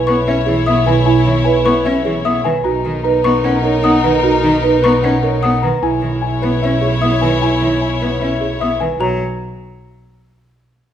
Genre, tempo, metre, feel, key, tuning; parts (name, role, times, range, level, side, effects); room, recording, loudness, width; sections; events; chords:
classical, minimalist pattern music; 151 BPM; 4/4; straight; B major; A4 = 439 Hz
dark baby grand piano; melody; 0.0-9.2 s; B4 to A#5; -20 LUFS; left 9 dB
rich chamber string section; sustained chords; 0.0-8.8 s; D#4 to C#5; -22 LUFS; left 3 dB
buzzing marimba with soft mallets; arpeggios; 0.0-9.2 s; E4 to B4; -20 LUFS; right 4 dB
clear chamber double bass section; bass; 0.0-9.2 s; B1; -19 LUFS; right 2 dB
warm French horn; second line; 0.1-8.7 s; D#4 to E4; -20 LUFS; right 2 dB
rich cello; accompaniment; 0.1-9.2 s; D#3 to C#4; -22 LUFS; equal
xylophone with soft rubber mallets; arpeggios; 0.1-9.2 s; A#5 to D#6; -23 LUFS; left 3 dB
wet recital hall reverb, RT60 1.4 s; -12 LUFS; side -10 dB against mid
0.0-9.0 A section; 9.0-10.6 B section
0.0 C#m7/B; 2.6 Bmaj7; 5.8 C#m7/B; 9.0 B5